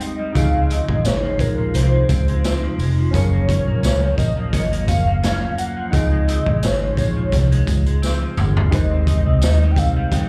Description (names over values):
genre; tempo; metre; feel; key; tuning
indie pop, bedroom pop; 86 BPM; 4/4; swing 55% on 16ths; unclear; A4 = 440 Hz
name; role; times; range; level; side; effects
warm velvety synth lead; melody; 0.0-10.3 s; Bb4 to G5; -27 LUFS; equal; analog chorus, slapback echo
clean electric guitar; accompaniment; 0.0-10.3 s; Gb2 to Eb4; -30 LUFS; equal; lush chorus, vibrato effect, slapback echo
warm upright piano; accompaniment; 0.0-10.3 s; F3 to C5; -34 LUFS; equal; none
warm analog pad; sustained chords; 0.0-10.3 s; F3 to Bb4; -35 LUFS; equal; none
raw garage drum kit; drums; 0.0-10.3 s; hi-hat, kick drum, snare drum, toms; -24 LUFS; equal; none
tambourine; percussion; 0.0-10.3 s; none; -39 LUFS; equal; none
vintage muted fingered electric bass; bass; 0.4-10.3 s; F1 to Eb2; -21 LUFS; equal; none
room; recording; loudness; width
little or no reverb; live gig heard through the venue's PA, club reverb; -18 LUFS; mono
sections
0.0-10.3 A section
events
drum fill 8.0-8.7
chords
0.4 Dbmaj7; 3.1 Gbmaj7; 5.9 Dbmaj7; 8.7 Abmaj7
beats
| 0.36 1.05 1.75 2.45 | 3.14 3.84 4.54 5.24 | 5.93 6.63 7.33 8.03 | 8.72 9.42 10.12